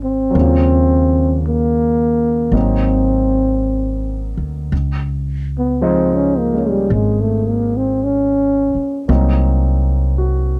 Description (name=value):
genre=jazz ballad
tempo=55 BPM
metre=4/4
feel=swing 69% on 8ths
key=Db major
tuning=A4 = 442 Hz
part: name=breathy trombone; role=melody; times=0.0-9.1 s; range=G3 to Db4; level=-18 LUFS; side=equal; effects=none
part: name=warm baby grand piano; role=accompaniment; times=0.0-10.6 s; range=Db3 to C5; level=-24 LUFS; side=equal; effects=none
part: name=upright bass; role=bass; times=0.0-10.6 s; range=Ab1 to Eb2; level=-20 LUFS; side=equal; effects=none
room=little or no reverb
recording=dry, close 1970s-style studio recording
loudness=-16 LUFS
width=mono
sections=0.0-4.7 A section; 4.7-10.6 B section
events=trombone solo 4.7-10.6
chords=0.3 Ebm7; 2.5 Ab7; 4.7 Dbmaj9; 9.1 Cm7b5